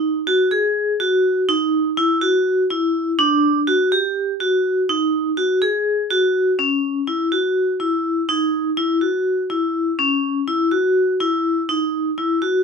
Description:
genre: progressive instrumental, progressive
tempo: 247 BPM (eighths)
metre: 7/8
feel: straight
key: unclear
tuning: A4 = 441 Hz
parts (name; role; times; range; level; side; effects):
- vibraphone with hard mallets; solo; 0.0-12.6 s; C#4 to G#4; -17 LUFS; equal; none
room: moderate studio ambience, RT60 0.5 s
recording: band playing live in one room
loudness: -17 LUFS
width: side -5 dB against mid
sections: 0.0-6.6 A section; 6.6-12.6 B section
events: none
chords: none

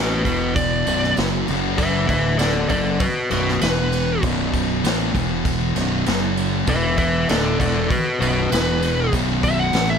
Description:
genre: stoner and doom metal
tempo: 98 BPM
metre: 4/4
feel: straight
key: B minor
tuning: A4 = 442 Hz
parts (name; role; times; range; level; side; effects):
- fuzz lead guitar; melody; 0.0-10.0 s; F#4 to F#5; -22 LUFS; left 1 dB; distortion
- thick fuzz guitar; riff; 0.0-10.0 s; B1 to A3; -24 LUFS; left 13 dB; distortion
- thick fuzz guitar; riff; 0.0-10.0 s; B1 to A3; -24 LUFS; right 12 dB; distortion
- fingered electric bass; bass; 0.0-10.0 s; B0 to A1; -26 LUFS; equal; overdrive
- vintage brush drum kit; drums; 0.3-9.9 s; crash cymbal, kick drum, snare drum; -25 LUFS; right 1 dB; none
room: light reverb, small room ambience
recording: none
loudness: -17 LUFS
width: side -7 dB against mid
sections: 0.0-10.0 A section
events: lead electric guitar solo 0.0-10.0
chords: 0.2 E5; 0.9 Bm; 1.5 F#5; 2.1 D5; 2.7 B5; 3.6 E5; 4.2 B5; 5.2 E5; 5.8 B5; 6.1 F#5; 6.7 E5; 7.3 Bm; 8.5 E5; 9.1 B5

